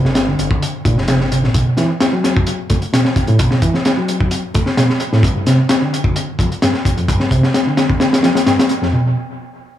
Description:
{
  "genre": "breakbeat, breaks",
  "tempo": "130 BPM",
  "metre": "4/4",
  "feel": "straight",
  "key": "unclear",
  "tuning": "A4 = 440 Hz",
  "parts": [
    { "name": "reed electric piano", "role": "riff", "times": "0.0-9.1 s", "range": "E#2 to A3", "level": "-17 LUFS", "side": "equal", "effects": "overdrive, low-pass filter, dub echo" },
    { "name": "detuned saw bass", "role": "bass", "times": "0.1-1.5 s", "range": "F1 to G1", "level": "-22 LUFS", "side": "equal", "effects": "none" },
    { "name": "crunchy breakbeat drum kit", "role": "drums", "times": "0.1-8.9 s", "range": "hi-hat, kick drum, snare drum", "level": "-15 LUFS", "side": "left 1 dB", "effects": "dub echo" }
  ],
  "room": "moderate plate reverb, RT60 1.0 s",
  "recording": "echo-heavy mix, small room ambience",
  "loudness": "-13 LUFS",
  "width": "side -12 dB against mid",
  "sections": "0.0-8.9 A section",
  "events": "filter sweep on reed electric piano 0.0-8.9",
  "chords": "0.0 Gm7; 1.5 B5; 5.2 G5; 8.9 N.C.",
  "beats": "0.16 0.62 1.08 | 1.54 2.00 2.46 2.93 | 3.39 3.85 4.31 4.77 | 5.23 5.70 6.16 6.62 | 7.08 7.54 8.00 8.46 | 8.93"
}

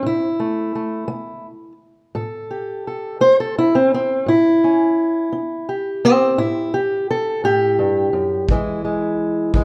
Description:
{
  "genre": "acoustic country blues, solo or duo",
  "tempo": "57 BPM (dotted quarters)",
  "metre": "12/8",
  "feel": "straight",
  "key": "A mixolydian",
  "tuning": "A4 = 441 Hz",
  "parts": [
    { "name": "fingerpicked steel-string acoustic guitar", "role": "melody", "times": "0.0-9.6 s", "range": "E2 to C5", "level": "-19 LUFS", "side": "equal", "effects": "none" },
    { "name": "kick drum", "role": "drums", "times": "8.5-9.6 s", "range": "none", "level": "-21 LUFS", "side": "equal", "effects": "none" }
  ],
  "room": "moderate recital hall reverb, RT60 1.8 s",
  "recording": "recorded in a church or concert hall",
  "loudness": "-19 LUFS",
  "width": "mono",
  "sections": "0.0-9.6 A section",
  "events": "steel-string acoustic guitar solo 0.0-9.6",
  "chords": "0.0 A7(no3); 8.5 E",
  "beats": "| 0.03 1.09 2.15 3.21 | 4.26 5.32 6.38 7.43 | 8.49 9.54"
}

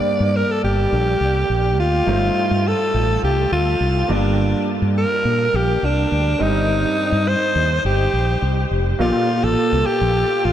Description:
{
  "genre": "1980s-style pop",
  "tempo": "104 BPM",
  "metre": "4/4",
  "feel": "straight",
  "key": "G minor",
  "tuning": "A4 = 445 Hz",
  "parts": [
    { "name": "raspy alto saxophone", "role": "melody", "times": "0.0-10.5 s", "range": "D4 to D5", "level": "-19 LUFS", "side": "equal", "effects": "analog delay" },
    { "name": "clear concert grand piano", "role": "accompaniment", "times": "0.0-10.5 s", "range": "G2 to Eb5", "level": "-24 LUFS", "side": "right 2 dB", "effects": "wide subtle chorus" },
    { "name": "mellow fretless electric bass", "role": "bass", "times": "0.2-10.5 s", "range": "F1 to Bb2", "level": "-20 LUFS", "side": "equal", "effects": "analog chorus" }
  ],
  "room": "wet huge ambient reverb, RT60 8.0 s",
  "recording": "dreamy mix soaked in reverb",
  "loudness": "-16 LUFS",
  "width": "side -10 dB against mid",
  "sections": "0.0-9.0 A section; 9.0-10.5 B section",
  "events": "none",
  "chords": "0.0 Gm; 2.1 F7/G; 4.1 Gm; 6.4 Cm/G; 9.0 Bbmaj7",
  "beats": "0.34 0.92 1.50 | 2.08 2.65 3.23 3.81 | 4.38 4.96 5.54 6.11 | 6.69 7.27 7.84 8.42 | 9.00 9.58 10.15"
}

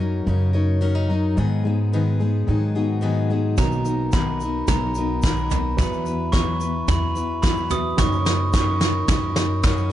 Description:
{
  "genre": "indie folk with a building arrangement",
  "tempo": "109 BPM",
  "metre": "4/4",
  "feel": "straight",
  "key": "B major",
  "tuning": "A4 = 441 Hz",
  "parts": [
    { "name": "fingerpicked steel-string acoustic guitar", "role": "accompaniment", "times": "0.0-5.8 s", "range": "F#2 to C#5", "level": "-28 LUFS", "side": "left 3 dB", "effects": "none" },
    { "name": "picked steel-string acoustic guitar", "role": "accompaniment", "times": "0.0-9.9 s", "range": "G#2 to B4", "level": "-26 LUFS", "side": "left 4 dB", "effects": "none" },
    { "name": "upright bass", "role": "bass", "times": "0.0-9.9 s", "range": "B1 to G#2", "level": "-23 LUFS", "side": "equal", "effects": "none" },
    { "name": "glockenspiel with soft plastic mallets", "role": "second line", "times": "3.6-9.9 s", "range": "A#5 to D#6", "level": "-26 LUFS", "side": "right 2 dB", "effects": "none" },
    { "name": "felt-muted upright piano", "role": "accompaniment", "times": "3.6-9.9 s", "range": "F#1 to B4", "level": "-32 LUFS", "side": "right 6 dB", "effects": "none" },
    { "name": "soft brush drum kit", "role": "drums", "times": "3.6-9.8 s", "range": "kick drum, snare drum, toms", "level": "-22 LUFS", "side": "right 1 dB", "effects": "none" },
    { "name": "tube shaker", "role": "percussion", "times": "3.6-9.8 s", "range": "none", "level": "-43 LUFS", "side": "left 10 dB", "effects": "none" },
    { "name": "group handclap", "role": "percussion", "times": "4.1-9.8 s", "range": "none", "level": "-37 LUFS", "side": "left 2 dB", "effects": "none" }
  ],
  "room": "small room ambience",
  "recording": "dark, warm production, nothing above 10.6 kHz",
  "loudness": "-19 LUFS",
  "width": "side -12 dB against mid",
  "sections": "0.0-9.9 A section",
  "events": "build-up 0.0-9.9; drum fill 3.6-9.9",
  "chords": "0.0 F#6; 1.4 G#m7; 3.6 Bmaj7; 5.8 Esus2; 8.0 F#6",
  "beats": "0.28 0.83 | 1.38 1.93 2.48 3.03 | 3.58 4.14 4.69 5.24 | 5.79 6.34 6.89 7.44 | 7.99 8.54 9.09 9.64"
}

